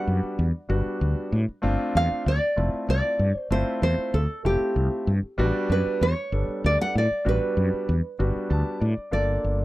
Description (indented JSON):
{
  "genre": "electric jazz fusion",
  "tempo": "64 BPM (dotted quarters)",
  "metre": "6/8",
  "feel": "straight",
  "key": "unclear",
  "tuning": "A4 = 440 Hz",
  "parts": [
    { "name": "nylon-string guitar", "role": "melody", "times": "0.0-9.6 s", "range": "G4 to F#5", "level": "-26 LUFS", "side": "right 1 dB", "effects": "none" },
    { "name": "warm concert grand piano", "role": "accompaniment", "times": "0.0-9.6 s", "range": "G3 to A5", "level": "-29 LUFS", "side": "left 1 dB", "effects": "none" },
    { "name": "mellow fretless electric bass", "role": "bass", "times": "0.1-9.6 s", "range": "F1 to A2", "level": "-23 LUFS", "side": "equal", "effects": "none" }
  ],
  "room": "little or no reverb",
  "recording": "dry, close 1970s-style studio recording",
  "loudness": "-22 LUFS",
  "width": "side -17 dB against mid",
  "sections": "0.0-9.1 A section",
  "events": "grand piano fill 8.2-9.1",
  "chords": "0.0 A13sus4; 1.6 G13sus4; 5.4 A13sus4; 9.1 Gm9"
}